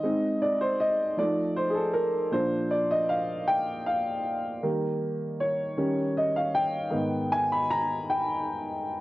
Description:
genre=gospel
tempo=52 BPM (dotted quarters)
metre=6/8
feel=straight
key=Eb major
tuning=A4 = 439 Hz
part: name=warm upright piano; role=solo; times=0.0-9.0 s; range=Ab2 to Cb6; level=-25 LUFS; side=equal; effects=cassette tape
room=light reverb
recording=home recording on cassette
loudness=-25 LUFS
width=side -17 dB against mid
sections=0.0-9.0 A section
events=upright piano solo 0.0-9.0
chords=0.1 Ab; 1.2 F7; 2.3 Bb; 4.6 Eb; 5.8 Eb7; 6.9 Abm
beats=| 0.05 1.20 | 2.35 3.49 | 4.64 5.78 | 6.93 8.07

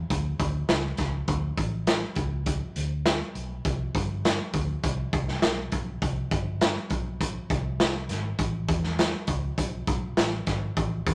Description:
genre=uptempo 1960s-style soul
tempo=101 BPM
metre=4/4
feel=straight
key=unclear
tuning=A4 = 440 Hz
part: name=vintage muted fingered electric bass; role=bass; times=0.0-11.1 s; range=G1 to E2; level=-33 LUFS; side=equal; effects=none
part: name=raw garage drum kit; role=drums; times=0.1-11.1 s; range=hi-hat, kick drum, snare drum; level=-29 LUFS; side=equal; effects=none
room=light reverb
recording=none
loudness=-28 LUFS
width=mono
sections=0.0-11.1 A section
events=none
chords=none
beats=0.10 0.69 | 1.28 1.87 2.46 3.06 | 3.65 4.24 4.83 5.42 | 6.02 6.61 7.20 7.80 | 8.39 8.98 9.58 10.17 | 10.77

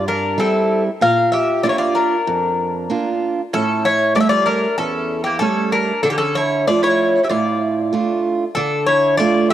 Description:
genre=greek folk, Greek bouzouki band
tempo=95 BPM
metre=4/4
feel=straight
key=D harmonic minor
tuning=A4 = 438 Hz
part: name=Greek bouzouki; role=melody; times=0.0-9.5 s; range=G4 to F5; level=-18 LUFS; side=left 3 dB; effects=cassette tape
part: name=mandolin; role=second line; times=0.0-9.5 s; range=Bb3 to Bb4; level=-25 LUFS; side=right 5 dB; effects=cassette tape
part: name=picked old ladder-braced acoustic guitar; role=accompaniment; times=0.0-9.5 s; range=E2 to C#5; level=-19 LUFS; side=right 4 dB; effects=cassette tape
room=moderate lush hall reverb, RT60 2.4 s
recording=home recording on cassette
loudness=-15 LUFS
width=side -11 dB against mid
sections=0.0-8.6 A section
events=none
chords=0.0 C; 1.0 Bb; 3.5 A7; 6.0 Dm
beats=0.38 | 1.01 1.64 2.27 2.89 | 3.52 4.15 4.78 5.41 | 6.04 6.67 7.30 7.93 | 8.56 9.19

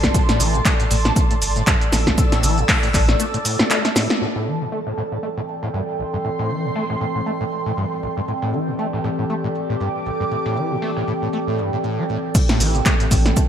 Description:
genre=acid house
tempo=118 BPM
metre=4/4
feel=swing 56% on 16ths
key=A minor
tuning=A4 = 440 Hz
part: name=overdriven acid bass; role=riff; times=0.0-13.4 s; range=A1 to A3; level=-24 LUFS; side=left 1 dB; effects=distortion, tube saturation, lush chorus, sidechain pumping, ping-pong delay
part: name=warm sub bass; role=bass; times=0.0-3.2, 12.6-13.3 s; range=G1 to A1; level=-21 LUFS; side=equal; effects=sidechain pumping
part: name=electronic kick drum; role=drums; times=0.0-3.1, 12.3-13.5 s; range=none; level=-18 LUFS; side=equal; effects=studio ambience
part: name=punchy analog drum machine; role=drums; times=0.0-4.2, 12.3-13.5 s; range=crash cymbal, handclaps, hi-hat, shaker, snare drum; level=-20 LUFS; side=equal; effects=studio ambience, gated reverb
part: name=airy breathy pad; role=texture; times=0.0-13.5 s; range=A4 to E6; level=-25 LUFS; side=right 2 dB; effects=chorus, phaser, sidechain pumping
part: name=breakbeat sampler-style drum kit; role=drums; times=0.1-13.5 s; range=hi-hat, shaker, snare drum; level=-32 LUFS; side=right 1 dB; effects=high-pass filter on snare, low-pass filter on snare, studio ambience, high-pass filter on perc, low-pass filter on perc, high-pass filter on hats, low-pass filter on hats, high-pass filter on room, low-pass filter on room, gated reverb
part: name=warbly tape-like pad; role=sustained chords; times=4.8-13.5 s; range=E3 to A4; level=-27 LUFS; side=left 1 dB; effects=chorus, built-in reverb, sidechain pumping
room=moderate lush hall reverb, RT60 1.8 s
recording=bright 1980s-style digital production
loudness=-18 LUFS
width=side -9 dB against mid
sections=0.0-4.2 A section; 4.2-12.3 B section; 12.3-13.5 A section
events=drop 0.0-4.2, 12.3-13.5; break 3.2-4.2; drum fill 3.8-4.2; band accent 4.1; filter sweep on acid bass 4.2-12.3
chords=0.0 Am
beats=| 0.14 0.65 1.16 1.67 | 2.18 2.69 3.20 3.71 | 4.21 4.72 5.23 5.74 | 6.25 6.76 7.26 7.77 | 8.28 8.79 9.30 9.81 | 10.31 10.82 11.33 11.84 | 12.35 12.86 13.37

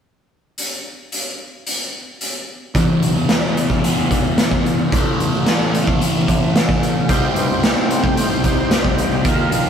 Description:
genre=psychedelic rock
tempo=110 BPM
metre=4/4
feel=straight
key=E harmonic minor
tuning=A4 = 441 Hz
part: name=raw garage drum kit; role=drums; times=0.6-9.7 s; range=hi-hat, kick drum, snare drum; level=-18 LUFS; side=equal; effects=none
part: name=fuzz guitar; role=riff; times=2.8-9.7 s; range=E2 to D#4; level=-19 LUFS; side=left 1 dB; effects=distortion, phaser
part: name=fuzz picked electric bass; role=bass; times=2.8-9.7 s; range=A1 to A2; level=-24 LUFS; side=equal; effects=overdrive
part: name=percussive tonewheel organ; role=sustained chords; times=7.1-9.7 s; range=Eb4 to G5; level=-23 LUFS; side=right 2 dB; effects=slow rotary speaker, overdrive, chorus vibrato
room=moderate studio reverb, RT60 0.6 s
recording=rough rehearsal-room recording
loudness=-15 LUFS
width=side -8 dB against mid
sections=0.6-2.7 A section; 2.7-9.7 B section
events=none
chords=0.6 N.C.; 2.7 E5; 4.9 A5; 7.1 Cm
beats=| 0.57 1.12 1.66 2.21 | 2.75 3.29 3.83 4.38 | 4.92 5.46 6.01 6.55 | 7.09 7.63 8.18 8.72 | 9.26

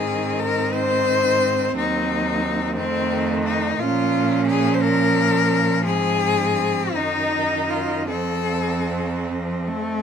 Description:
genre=classical, lyrical piece for cello ensemble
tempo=50-60 BPM (dotted quarters)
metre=6/8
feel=rubato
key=unclear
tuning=A4 = 437 Hz
part: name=clear cello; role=melody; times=0.0-9.2 s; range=C4 to C5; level=-22 LUFS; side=left 6 dB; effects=none
part: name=rich cello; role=second line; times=0.0-10.0 s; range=A3 to Eb4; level=-25 LUFS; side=right 7 dB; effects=none
part: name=rich cello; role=accompaniment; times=0.0-10.0 s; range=Eb3 to A3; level=-27 LUFS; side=left 1 dB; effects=none
part: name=warm cello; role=bass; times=0.0-10.0 s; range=Eb2 to Bb2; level=-27 LUFS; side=right 2 dB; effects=none
room=moderate studio ambience, RT60 0.5 s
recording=none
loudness=-18 LUFS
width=side -8 dB against mid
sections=0.0-10.0 A section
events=none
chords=0.0 Ab; 1.8 Cdim/Eb; 2.8 F7; 3.8 Bbm; 5.9 Fm/Ab; 6.9 Ebm/Gb; 8.1 F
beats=0.73 | 1.76 2.77 | 3.80 4.81 | 5.86 6.94 | 8.09 9.27

